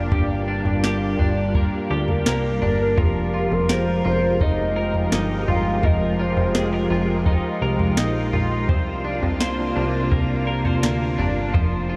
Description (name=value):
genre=dream pop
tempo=84 BPM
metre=4/4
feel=straight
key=F dorian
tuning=A4 = 440 Hz
part: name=soft string machine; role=sustained chords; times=0.0-12.0 s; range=C3 to Bb4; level=-28 LUFS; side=equal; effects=ensemble chorus
part: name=twelve-string electric guitar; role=arpeggios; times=0.0-12.0 s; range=G2 to C5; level=-27 LUFS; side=equal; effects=lush chorus, analog delay
part: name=plucky analog bass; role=bass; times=0.0-12.0 s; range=F1 to D2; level=-28 LUFS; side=equal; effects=none
part: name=soft vintage rhythm box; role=drums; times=0.1-11.7 s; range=kick drum, snare drum, toms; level=-25 LUFS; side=equal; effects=none
part: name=hollow clarinet-like synth lead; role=melody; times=1.9-6.9 s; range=G4 to F5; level=-29 LUFS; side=equal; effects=chorus, analog delay
room=wet huge ambient reverb, RT60 7.5 s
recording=dreamy mix soaked in reverb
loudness=-21 LUFS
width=mono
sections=0.0-12.0 A section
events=none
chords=0.1 Gm7; 3.0 Fm11; 8.7 Csus2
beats=| 0.12 0.83 1.55 2.26 | 2.98 3.69 4.40 5.12 | 5.83 6.55 7.26 7.98 | 8.69 9.40 10.12 10.83 | 11.55